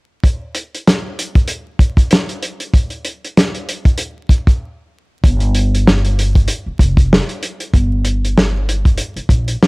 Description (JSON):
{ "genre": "hip hop, boom-bap hip-hop", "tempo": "96 BPM", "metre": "4/4", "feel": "swing 57% on 16ths", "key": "G minor", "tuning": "A4 = 441 Hz", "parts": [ { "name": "warm soul drum kit", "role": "drums", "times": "0.2-9.7 s", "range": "hi-hat, kick drum, snare drum", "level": "-12 LUFS", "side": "equal", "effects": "none" }, { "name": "upright bass", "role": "bass", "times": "5.2-9.5 s", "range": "F1 to Bb1", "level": "-16 LUFS", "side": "equal", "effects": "transformer saturation" } ], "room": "little or no reverb", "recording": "dry, gritty hardware recording, vinyl crackle", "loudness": "-13 LUFS", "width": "side -30 dB against mid", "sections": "0.2-5.2 A section; 5.2-9.7 B section", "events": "break 4.6-5.2", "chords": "none", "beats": "| 0.24 0.86 1.49 2.11 | 2.74 3.36 3.99 4.61 | 5.24 5.86 6.49 7.11 | 7.74 8.36 8.99 9.61" }